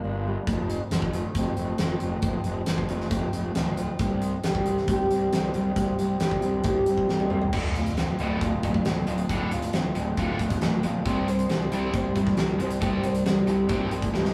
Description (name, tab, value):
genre	quiet-loud alternative rock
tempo	136 BPM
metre	4/4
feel	straight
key	D minor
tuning	A4 = 438 Hz
part	fingerpicked steel-string acoustic guitar	arpeggios	0.0-14.3 s	D2 to C5	-32 LUFS	equal	none
part	fuzz fingered electric bass	bass	0.0-14.3 s	D1 to C#2	-31 LUFS	equal	overdrive
part	huge arena drum kit	drums	0.5-14.3 s	crash cymbal, hi-hat, kick drum, snare drum, toms	-30 LUFS	equal	none
part	tight distorted guitar	riff	7.5-14.3 s	D2 to C4	-31 LUFS	equal	distortion
room	moderate small room reverb, RT60 0.6 s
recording	rough rehearsal-room recording, small room ambience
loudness	-26 LUFS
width	mono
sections	0.0-7.5 A section; 7.5-14.3 B section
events	drum fill 7.1-7.5, 14.1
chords	0.5 F; 4.0 C5; 7.5 Dm7; 11.1 C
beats	0.04 | 0.48 0.92 1.36 1.80 | 2.24 2.68 3.12 3.56 | 4.01 4.45 4.89 5.33 | 5.77 6.21 6.66 7.10 | 7.54 7.98 8.42 8.86 | 9.30 9.74 10.18 10.62 | 11.06 11.50 11.94 12.38 | 12.82 13.26 13.70 14.14